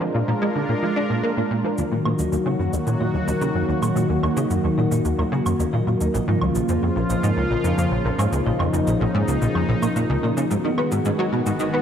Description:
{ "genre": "ambient, sequencer-driven space music", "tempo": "110 BPM", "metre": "4/4", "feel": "straight", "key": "Eb minor", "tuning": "A4 = 440 Hz", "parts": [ { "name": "sweeping resonant pad", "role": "sustained chords", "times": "0.0-11.8 s", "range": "Db3 to Bb4", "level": "-22 LUFS", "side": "equal", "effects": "chorus" }, { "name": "plucky analog bass", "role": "riff", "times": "0.0-11.8 s", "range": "Bb1 to D4", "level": "-22 LUFS", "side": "equal", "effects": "ensemble chorus, tape echo" }, { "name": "analog drone", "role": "bass", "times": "3.4-11.8 s", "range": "none", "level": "barely audible", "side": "none", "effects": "none" }, { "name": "cabasa and woodblock", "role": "percussion", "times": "1.8-11.7 s", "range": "none", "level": "-34 LUFS", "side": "right 3 dB", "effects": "tape echo" }, { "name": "semi-hollow electric guitar", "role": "arpeggios", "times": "1.9-11.8 s", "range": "Db4 to Eb5", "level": "-38 LUFS", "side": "right 1 dB", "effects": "auto-pan, tape echo" } ], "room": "moderate lush hall reverb, RT60 2.8 s", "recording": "none", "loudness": "-19 LUFS", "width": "side -8 dB against mid", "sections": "0.0-1.8 A section; 1.8-11.8 B section", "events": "fade-in on clean electric guitar 1.8-11.8", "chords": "0.0 Bb7; 1.8 Ebm; 6.1 Bbm; 10.5 Abm7" }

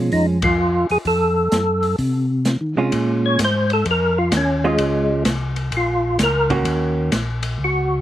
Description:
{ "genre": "soul jazz organ trio", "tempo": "128 BPM", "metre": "4/4", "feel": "swing 66% on 8ths", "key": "Bb minor", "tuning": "A4 = 441 Hz", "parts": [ { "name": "hollow-body jazz guitar", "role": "accompaniment", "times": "0.0-7.1 s", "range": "Eb3 to Gb4", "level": "-20 LUFS", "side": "right 3 dB", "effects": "none" }, { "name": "mellow tonewheel organ", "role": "bass", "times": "0.0-8.0 s", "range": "Bb1 to Eb3", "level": "-21 LUFS", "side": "left 1 dB", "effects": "chorus vibrato, slow rotary speaker" }, { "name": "percussive tonewheel organ", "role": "melody", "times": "0.1-8.0 s", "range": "Ab3 to Db5", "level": "-19 LUFS", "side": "equal", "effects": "slow rotary speaker, chorus vibrato" }, { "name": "open jazz drum kit", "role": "drums", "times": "0.1-7.7 s", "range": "hi-hat, kick drum, ride cymbal, snare drum", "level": "-25 LUFS", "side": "left 1 dB", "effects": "none" } ], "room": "little or no reverb", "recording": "recorded outdoors, with no room sound", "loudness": "-16 LUFS", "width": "side -12 dB against mid", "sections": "0.0-2.9 A section; 2.9-8.0 B section", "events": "band accent 0.4; tonewheel organ solo 2.9-8.0", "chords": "0.0 Bbm7 (rootless); 1.1 F7; 2.9 Bbm7; 6.7 Ebm7" }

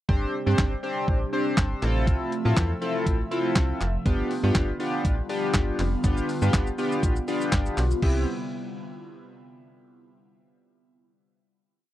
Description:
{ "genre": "dance-pop", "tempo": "121 BPM", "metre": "4/4", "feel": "straight", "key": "C major", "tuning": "A4 = 445 Hz", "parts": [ { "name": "chorused polysynth", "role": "accompaniment", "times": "0.1-8.3 s", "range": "B3 to C5", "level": "-27 LUFS", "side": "left 1 dB", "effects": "sidechain pumping" }, { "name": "airy breathy pad", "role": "sustained chords", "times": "0.1-8.3 s", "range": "C3 to E5", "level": "-33 LUFS", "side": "equal", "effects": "chorus, phaser, sidechain pumping" }, { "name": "slap-like FM bass", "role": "bass", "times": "0.1-8.3 s", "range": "F1 to A2", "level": "-26 LUFS", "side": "equal", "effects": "sidechain pumping" }, { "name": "clean 12-bit digital drum machine", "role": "drums", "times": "0.1-8.1 s", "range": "crash cymbal, handclaps, hi-hat, kick drum, shaker, snare drum", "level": "-25 LUFS", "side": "equal", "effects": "none" } ], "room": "little or no reverb", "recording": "dry, close 1970s-style studio recording", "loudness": "-22 LUFS", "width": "side -14 dB against mid", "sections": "0.1-8.0 pre-chorus; 8.0-10.0 final chord", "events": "none", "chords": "0.1 Gsus4; 1.8 Fmaj7/A; 4.1 G7; 8.0 Cmaj7" }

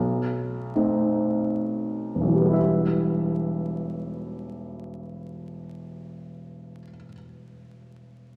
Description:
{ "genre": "classical, romantic nocturne for solo piano", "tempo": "20-26 BPM (dotted quarters)", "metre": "12/8", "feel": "rubato", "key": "E minor", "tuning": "A4 = 440 Hz", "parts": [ { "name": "warm grand piano", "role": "solo", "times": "0.0-8.4 s", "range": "E1 to E5", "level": "-27 LUFS", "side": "equal", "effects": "none" } ], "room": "wet concert hall reverb, RT60 2.1 s", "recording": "vinyl crackle", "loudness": "-25 LUFS", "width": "mono", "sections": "0.0-2.5 A section; 2.5-8.4 B section", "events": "slowing down 0.0-2.5", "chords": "0.0 B7b9; 2.5 Em" }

